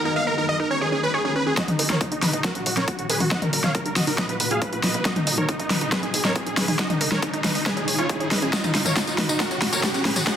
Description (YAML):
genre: uplifting trance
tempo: 138 BPM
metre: 4/4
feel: straight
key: Eb minor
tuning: A4 = 437 Hz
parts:
  - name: shimmering ambient pad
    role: sustained chords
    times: 0.0-10.4 s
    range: Bb2 to Gb4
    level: -31 LUFS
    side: left 1 dB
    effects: chorus, built-in reverb, sidechain pumping
  - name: wide unison pluck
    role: arpeggios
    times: 0.0-10.4 s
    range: Db4 to F5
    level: -30 LUFS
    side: right 2 dB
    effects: sidechain pumping, dub echo
  - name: supersaw chords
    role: melody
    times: 0.1-10.3 s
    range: Eb4 to Gb5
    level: -26 LUFS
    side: right 1 dB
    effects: cassette tape, sidechain pumping, low-pass filter, dub echo
  - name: plucky unison lead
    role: second line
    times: 0.1-1.5 s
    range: Ab4 to F5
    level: -32 LUFS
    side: left 1 dB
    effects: none
  - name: big-room dance drum kit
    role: drums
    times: 1.6-10.4 s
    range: hi-hat, snare drum, tambourine, toms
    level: -23 LUFS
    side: left 1 dB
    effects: overdrive, small room reverb, sidechain pumping on hats, sidechain pumping on toms, sidechain pumping on perc
  - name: electronic kick drum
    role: drums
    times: 1.6-10.4 s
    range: none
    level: -29 LUFS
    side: equal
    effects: overdrive, high-pass filter on kick, small room reverb
  - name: riser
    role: sound effects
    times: 4.3-10.4 s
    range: none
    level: -33 LUFS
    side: equal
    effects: none
  - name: tight sequencer bass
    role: bass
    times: 1.7-10.2 s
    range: Ab1 to Gb2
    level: -40 LUFS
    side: equal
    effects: none
room: moderate lush hall reverb, RT60 2.4 s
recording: dense, heavily limited modern master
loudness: -20 LUFS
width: side -9 dB against mid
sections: 0.0-1.6 A section; 1.6-10.4 B section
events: filter sweep on synth arpeggio sound 0.0-1.6, 1.6-10.4; build-up 1.6-10.4; drum fill 1.6-10.4; filter sweep on supersaw synth 1.6-10.4; riser 4.3-10.4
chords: 0.0 Ebm; 0.7 Db; 1.6 Ebm; 2.4 Gb; 3.3 Ebm; 4.2 Fdim; 5.1 Ebm/Gb; 5.9 Abm; 6.8 Ebm; 7.7 Db; 8.5 Ebm; 9.4 Gb